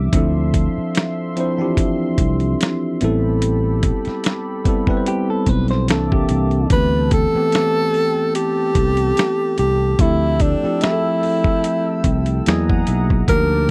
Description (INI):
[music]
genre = R&B, neo-soul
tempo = 73 BPM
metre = 4/4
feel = swing 54% on 16ths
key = unclear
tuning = A4 = 439 Hz
[part]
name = bell-like tine electric piano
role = accompaniment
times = 0.0-13.7 s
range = E3 to G#5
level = -23 LUFS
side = equal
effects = phaser
[part]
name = warm analog pad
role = sustained chords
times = 0.0-13.7 s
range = F3 to E6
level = -32 LUFS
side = equal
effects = chorus
[part]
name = sustaining fretless electric bass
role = bass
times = 0.0-13.7 s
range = A1 to E2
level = -22 LUFS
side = equal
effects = none
[part]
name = dusty soul sampler-style drum kit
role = drums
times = 0.1-13.5 s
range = hi-hat, kick drum, snare drum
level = -22 LUFS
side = equal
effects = none
[part]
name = clean electric guitar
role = second line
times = 5.1-6.7 s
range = G4 to C5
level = -28 LUFS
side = equal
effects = none
[part]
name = breathy tenor saxophone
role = melody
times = 6.7-13.7 s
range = D4 to B4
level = -21 LUFS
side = equal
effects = none
[sound]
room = little or no reverb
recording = dry, close 1970s-style studio recording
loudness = -18 LUFS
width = mono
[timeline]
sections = 0.0-6.7 A section; 6.7-13.7 B section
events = tine electric piano fill 12.0-13.3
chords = 0.1 Dm9; 3.0 Am9; 5.9 C13; 6.7 Am9; 10.0 Fmaj9; 12.5 Emaj9#11